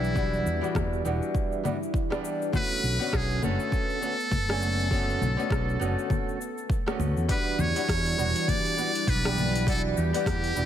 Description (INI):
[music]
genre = sunset chillout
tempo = 101 BPM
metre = 4/4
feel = swing 57% on 16ths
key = E dorian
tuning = A4 = 440 Hz
[part]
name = trumpet with metal mute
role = melody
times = 0.0-10.7 s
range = E4 to D5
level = -30 LUFS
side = equal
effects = tape echo
[part]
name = flamenco guitar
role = accompaniment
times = 0.0-10.7 s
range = D3 to G#5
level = -31 LUFS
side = moving between left 3 dB and right 5 dB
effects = auto-pan, tape echo
[part]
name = lush unison pad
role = sustained chords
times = 0.0-10.7 s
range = E3 to F#5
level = -35 LUFS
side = right 1 dB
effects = chorus
[part]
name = mellow fretless electric bass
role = bass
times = 0.0-10.7 s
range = E1 to E2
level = -29 LUFS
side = equal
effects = none
[part]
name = deep house drum kit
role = drums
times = 0.0-10.7 s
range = cabasa, congas, hi-hat, rim click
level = -34 LUFS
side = left 4 dB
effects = overdrive, studio ambience
[part]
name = electronic kick drum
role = drums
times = 0.2-10.4 s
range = none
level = -29 LUFS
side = equal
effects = overdrive, studio ambience
[sound]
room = light reverb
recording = dense, heavily limited modern master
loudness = -24 LUFS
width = side -10 dB against mid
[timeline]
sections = 0.0-7.3 A section; 7.3-10.7 B section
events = none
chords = 0.0 Em9; 2.5 Bm9; 7.3 Em9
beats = | 0.16 0.76 1.35 1.95 | 2.54 3.13 3.73 4.32 | 4.92 5.51 6.10 6.70 | 7.29 7.89 8.48 9.07 | 9.67 10.26